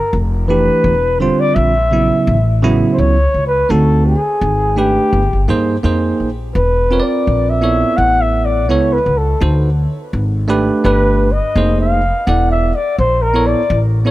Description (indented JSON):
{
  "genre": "hip hop",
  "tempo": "84 BPM",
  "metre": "4/4",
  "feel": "swing 58% on 16ths",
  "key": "unclear",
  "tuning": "A4 = 440 Hz",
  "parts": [
    { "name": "breathy flugelhorn", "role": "melody", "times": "0.0-14.1 s", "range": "G4 to F#5", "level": "-16 LUFS", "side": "left 1 dB", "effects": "tape echo" },
    { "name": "upright bass", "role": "bass", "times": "0.1-14.1 s", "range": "E1 to G2", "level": "-16 LUFS", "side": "equal", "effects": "none" },
    { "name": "bell-like tine electric piano", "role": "accompaniment", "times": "0.5-14.1 s", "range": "C#3 to D5", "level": "-17 LUFS", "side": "right 3 dB", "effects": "none" }
  ],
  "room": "little or no reverb",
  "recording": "none",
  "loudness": "-12 LUFS",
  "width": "side -16 dB against mid",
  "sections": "0.0-14.1 A section",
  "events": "flugelhorn solo 0.0-14.1",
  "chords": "0.1 Fsus2; 0.8 Em7; 1.6 A#add9; 2.3 Aadd9; 3.7 D7b9; 4.4 G#mmaj7; 5.1 G#maj9/G; 5.8 Fm7; 6.6 E5; 7.3 A#add9; 8.0 Aadd9; 9.4 D7b9; 10.1 G#dim; 10.8 Gadd9; 11.6 Fm7; 12.3 E7sus4; 13.0 A#maj9#11"
}